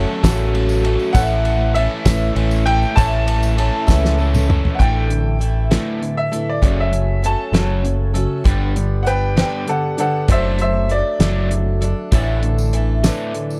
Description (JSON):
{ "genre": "folk rock and heartland rock", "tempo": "66 BPM (dotted quarters)", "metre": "6/8", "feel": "straight", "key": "A mixolydian", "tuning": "A4 = 441 Hz", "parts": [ { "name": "pedal steel guitar", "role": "second line", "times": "0.0-0.5 s", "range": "A5", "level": "-36 LUFS", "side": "equal", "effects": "none" }, { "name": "picked swing-style acoustic guitar", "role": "accompaniment", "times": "0.0-13.6 s", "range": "F#2 to A4", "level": "-27 LUFS", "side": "equal", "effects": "none" }, { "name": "mellow tonewheel organ", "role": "sustained chords", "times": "0.0-13.6 s", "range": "A3 to B4", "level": "-34 LUFS", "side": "equal", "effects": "none" }, { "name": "crunchy overdriven guitar", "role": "riff", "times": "0.0-13.6 s", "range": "F#2 to A4", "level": "-27 LUFS", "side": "equal", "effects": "spring reverb" }, { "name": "deep dub picked electric bass", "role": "bass", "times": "0.0-13.1 s", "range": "F#1 to C#2", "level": "-21 LUFS", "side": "equal", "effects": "none" }, { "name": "damped 70s drum kit", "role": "drums", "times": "0.2-13.5 s", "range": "hi-hat, kick drum, ride cymbal, snare drum, toms", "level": "-20 LUFS", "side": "equal", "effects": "none" }, { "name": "tambourine", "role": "percussion", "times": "0.2-4.5, 12.1-13.6 s", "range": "none", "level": "-39 LUFS", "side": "equal", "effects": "none" }, { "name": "bright grand piano", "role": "melody", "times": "1.1-11.5 s", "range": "A4 to A5", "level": "-24 LUFS", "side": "equal", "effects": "none" } ], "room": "little or no reverb", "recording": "dry, close 1970s-style studio recording", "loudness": "-18 LUFS", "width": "mono", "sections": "0.0-4.8 A section; 4.8-13.6 B section", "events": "drum fill 3.9-4.8; grand piano solo 4.8-13.6", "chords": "0.0 F#m; 1.1 A; 4.8 Asus4; 6.6 F#m; 8.5 G; 10.3 D/F#; 12.1 Asus4" }